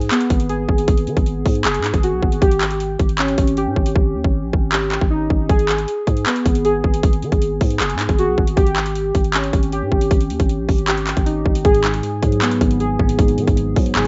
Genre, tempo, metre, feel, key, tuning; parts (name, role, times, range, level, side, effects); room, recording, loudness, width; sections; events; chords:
hip hop, trap; 156 BPM; 4/4; half-time; G# minor; A4 = 439 Hz
warbly lo-fi synth keys; arpeggios; 0.0-14.1 s; B3 to G#4; -23 LUFS; equal; chorus, digital delay
growling 808-style bass; bass; 0.0-14.1 s; F#1 to D#3; -25 LUFS; equal
trap drum kit; drums; 0.0-14.1 s; handclaps, hi-hat, kick drum; -20 LUFS; equal; overdrive
bell-like tine electric piano; accompaniment; 11.6-14.1 s; G#2 to B3; -24 LUFS; equal
light reverb; rough home demo mix, nothing above 7.8 kHz; -18 LUFS; mono
0.0-14.1 A section
hi-hats muted 4.0-5.5
0.0 G#m7; 2.4 D#7/G#; 5.5 G#m7; 8.6 D#7/G#; 11.6 G#m7